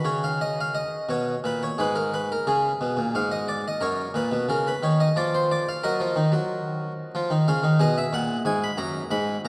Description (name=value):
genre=classical, baroque-style suite movement for harpsichord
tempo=89 BPM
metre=3/4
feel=rubato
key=Eb minor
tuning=A4 = 439 Hz
part: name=harpsichord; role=solo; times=0.0-9.5 s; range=Gb2 to B5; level=-25 LUFS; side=equal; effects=none
room=wet cathedral reverb, RT60 5.1 s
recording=dark, warm production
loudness=-25 LUFS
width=mono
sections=0.0-9.5 A section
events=none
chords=0.0 Ebm; 1.1 Bbm; 1.8 Abm; 3.1 N.C.; 3.8 Ebm/Gb; 5.2 N.C.; 5.8 Ebm; 7.1 Dbadd9; 7.8 G#m